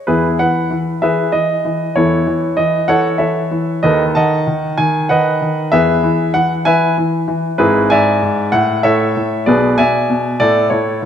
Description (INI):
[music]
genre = classical-period piano sonatina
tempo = 64 BPM (dotted quarters)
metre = 6/8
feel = straight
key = E major, A major from 7.6 s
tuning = A4 = 440 Hz
[part]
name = clear baby grand piano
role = solo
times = 0.0-11.1 s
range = G#1 to A5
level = -12 LUFS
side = equal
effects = none
[sound]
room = wet recital hall reverb, RT60 1.6 s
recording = none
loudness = -12 LUFS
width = side -8 dB against mid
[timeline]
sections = 0.1-11.1 A section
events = none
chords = 0.1 E; 1.9 A/E; 3.8 B7/D#; 5.7 E; 7.6 E7/G#; 8.5 A; 9.5 E7/B; 10.4 A